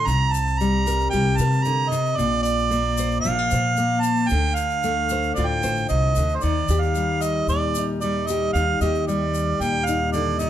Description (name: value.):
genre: acoustic folk duo or small band.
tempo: 113 BPM.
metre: 4/4.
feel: straight.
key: unclear.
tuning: A4 = 445 Hz.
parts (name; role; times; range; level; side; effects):
warm harmonica; melody; 0.0-10.5 s; C5 to Bb5; -23 LUFS; right 4 dB; none.
nylon-string guitar; accompaniment; 0.0-10.5 s; A2 to C5; -25 LUFS; left 3 dB; none.
upright bass; bass; 0.0-10.5 s; A1 to C3; -24 LUFS; equal; none.
egg shaker; percussion; 0.1-10.5 s; none; -37 LUFS; left 10 dB; none.
room: light reverb.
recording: dark, warm production.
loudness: -19 LUFS.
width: side -11 dB against mid.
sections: 0.0-6.4 A section; 6.4-10.5 B section.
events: none.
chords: 0.1 C5; 2.2 Bbsus2; 4.3 Dm7; 6.4 Ebmaj7.